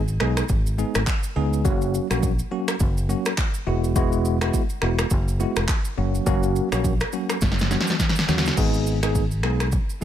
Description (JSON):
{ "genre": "afrobeats", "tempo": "104 BPM", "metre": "4/4", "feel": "swing 58% on 16ths", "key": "G# minor", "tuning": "A4 = 445 Hz", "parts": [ { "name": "fingered electric bass", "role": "bass", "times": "0.0-10.0 s", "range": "E1 to D#2", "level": "-24 LUFS", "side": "equal", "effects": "none" }, { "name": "deep house drum kit", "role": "drums", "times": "0.1-10.0 s", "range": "crash cymbal, finger snaps, handclaps, kick drum, rim click, shaker, snare drum", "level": "-23 LUFS", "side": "equal", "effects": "overdrive" }, { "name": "bell-like tine electric piano", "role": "accompaniment", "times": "0.2-10.0 s", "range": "F#3 to G#4", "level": "-26 LUFS", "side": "equal", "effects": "fast stereo tremolo" } ], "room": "little or no reverb", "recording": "none", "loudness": "-20 LUFS", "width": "side -10 dB against mid", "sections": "0.0-8.6 A section; 8.6-10.0 B section", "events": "drum fill 7.4-8.6", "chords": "0.0 G#m; 1.7 F#; 3.7 Eadd9; 6.0 F#; 8.6 G#m", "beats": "0.50 1.07 | 1.65 2.23 2.80 3.38 | 3.96 4.54 5.11 5.69 | 6.27 6.84 7.42 8.00 | 8.57 9.15 9.73" }